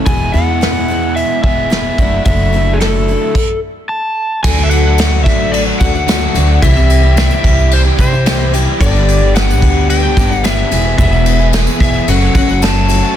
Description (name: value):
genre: folk rock and heartland rock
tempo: 110 BPM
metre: 4/4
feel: straight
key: unclear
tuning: A4 = 440 Hz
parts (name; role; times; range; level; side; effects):
- picked steel-string acoustic guitar; accompaniment; 0.0-13.2 s; E2 to G#4; -20 LUFS; left 7 dB; none
- biting overdriven guitar; riff; 0.0-13.2 s; E2 to G#4; -19 LUFS; right 2 dB; none
- overdriven slide guitar; melody; 0.1-13.1 s; G#4 to A5; -18 LUFS; left 1 dB; none
- upright bass; bass; 0.1-13.0 s; E1 to E2; -14 LUFS; equal; none
- soft brush drum kit; drums; 0.1-13.0 s; crash cymbal, hi-hat, kick drum, snare drum; -15 LUFS; equal; none
- bright tonewheel organ; sustained chords; 4.4-13.2 s; G4 to D6; -29 LUFS; equal; none
- tambourine; percussion; 4.4-13.1 s; none; -32 LUFS; right 13 dB; none
room: small room ambience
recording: dense, heavily limited modern master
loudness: -10 LUFS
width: side -10 dB against mid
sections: 0.0-4.4 A section; 4.4-13.2 B section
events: stop 3.4-4.4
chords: 0.1 E; 2.0 Dadd9/F#; 4.4 D; 6.6 C; 8.8 G; 10.7 E; 12.1 F#m